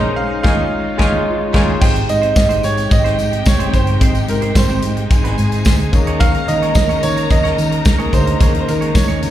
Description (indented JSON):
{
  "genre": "disco",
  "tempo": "109 BPM",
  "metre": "4/4",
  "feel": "straight",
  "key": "unclear",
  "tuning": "A4 = 440 Hz",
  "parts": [
    { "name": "bright grand piano", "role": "melody", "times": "0.0-9.3 s", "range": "Bb4 to G5", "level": "-20 LUFS", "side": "right 3 dB", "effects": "slapback echo" },
    { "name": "dark studio string section", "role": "second line", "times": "0.0-9.3 s", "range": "G4 to Bb5", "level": "-26 LUFS", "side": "left 2 dB", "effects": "slapback echo" },
    { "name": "barky tine electric piano", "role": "accompaniment", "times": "0.0-9.3 s", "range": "Ab3 to Eb5", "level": "-23 LUFS", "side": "left 4 dB", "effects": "overdrive, slapback echo" },
    { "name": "clean electric guitar", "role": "accompaniment", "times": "0.0-9.3 s", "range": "Ab3 to Db5", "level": "-27 LUFS", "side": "right 9 dB", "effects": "warbly pitch drift, slapback echo" },
    { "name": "clear studio string section", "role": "sustained chords", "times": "0.0-9.3 s", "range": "C3 to F4", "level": "-26 LUFS", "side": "right 3 dB", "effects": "none" },
    { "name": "fingered electric bass", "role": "bass", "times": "0.0-9.3 s", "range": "Gb1 to Eb3", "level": "-19 LUFS", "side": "equal", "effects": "none" },
    { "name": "modern studio drum kit", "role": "drums", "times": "0.4-9.3 s", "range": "crash cymbal, hi-hat, kick drum, snare drum", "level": "-16 LUFS", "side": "equal", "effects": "none" },
    { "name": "tambourine", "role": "percussion", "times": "1.8-9.3 s", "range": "none", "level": "-33 LUFS", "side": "left 3 dB", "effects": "none" }
  ],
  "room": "light reverb",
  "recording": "live gig heard through the venue's PA, club reverb",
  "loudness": "-12 LUFS",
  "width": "side -12 dB against mid",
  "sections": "0.0-1.8 A section; 1.8-9.3 B section",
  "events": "band accent 0.0-1.8",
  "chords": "0.4 Eb9sus4; 1.8 Abmaj7; 5.9 Eb7sus4",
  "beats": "0.17 0.72 1.27 | 1.81 2.37 2.91 3.46 | 4.01 4.56 5.11 5.66 | 6.21 6.75 7.30 7.85 | 8.40 8.95"
}